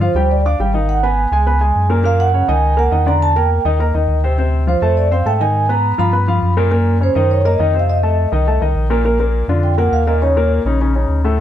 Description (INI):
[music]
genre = Afro-Cuban jazz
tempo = 206 BPM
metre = 4/4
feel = straight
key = unclear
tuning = A4 = 440 Hz
[part]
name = vibraphone with medium mallets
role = melody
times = 0.0-10.5 s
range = C5 to Cb6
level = -18 LUFS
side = right 3 dB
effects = none
[part]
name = warm grand piano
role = accompaniment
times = 0.0-11.4 s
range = A2 to D6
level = -18 LUFS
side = left 2 dB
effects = none
[part]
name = pure sine sub bass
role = bass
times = 0.0-11.4 s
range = Ab1 to Ab2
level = -16 LUFS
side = equal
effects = none
[sound]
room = light reverb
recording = none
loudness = -13 LUFS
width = side -10 dB against mid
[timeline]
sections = 0.0-9.1 A section; 9.1-11.4 B section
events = vibraphone solo 9.1-11.4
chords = 0.0 G5; 0.9 Abm; 1.5 Db5; 2.0 Gb6; 3.2 Em7b5; 3.8 Eb5; 4.4 Dm7; 5.6 Abm; 6.1 G7; 6.7 Gb6; 7.9 F7; 9.1 Bb; 10.2 Eb5